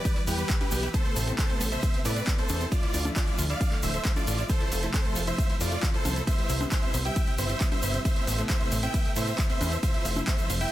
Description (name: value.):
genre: uplifting trance.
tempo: 135 BPM.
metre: 4/4.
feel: straight.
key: A minor.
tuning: A4 = 439 Hz.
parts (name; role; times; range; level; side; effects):
big supersaw lead; melody; 0.0-10.7 s; F4 to G5; -32 LUFS; right 1 dB; sidechain pumping, tape echo.
dark chamber string section; sustained chords; 0.0-10.7 s; C3 to G4; -36 LUFS; left 1 dB; sidechain pumping.
analog pluck; arpeggios; 0.1-10.6 s; G3 to A4; -39 LUFS; right 2 dB; chorus, sidechain pumping, digital delay.
electronic kick drum; drums; 0.1-10.4 s; none; -27 LUFS; equal; overdrive.
punchy analog drum machine; drums; 0.1-10.7 s; congas, handclaps, hi-hat, ride cymbal; -34 LUFS; right 1 dB; overdrive.
tube shaker; percussion; 0.1-10.7 s; none; -39 LUFS; left 4 dB; none.
plucky analog bass; bass; 0.3-10.7 s; D1 to A2; -29 LUFS; equal; tube saturation, sidechain pumping.
room: little or no reverb.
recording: dense, heavily limited modern master.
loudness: -24 LUFS.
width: side -14 dB against mid.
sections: 0.0-10.7 A section.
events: none.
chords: 0.0 Em; 0.9 Amadd9; 2.7 Dmadd9; 4.5 Fmaj7; 6.3 Cmaj7; 8.1 Amadd9; 9.8 Fmaj7.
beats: 0.05 0.50 | 0.94 1.39 1.83 2.27 | 2.72 3.16 3.61 4.05 | 4.50 4.94 5.38 5.83 | 6.27 6.72 7.16 7.61 | 8.05 8.50 8.94 9.38 | 9.83 10.27 10.72.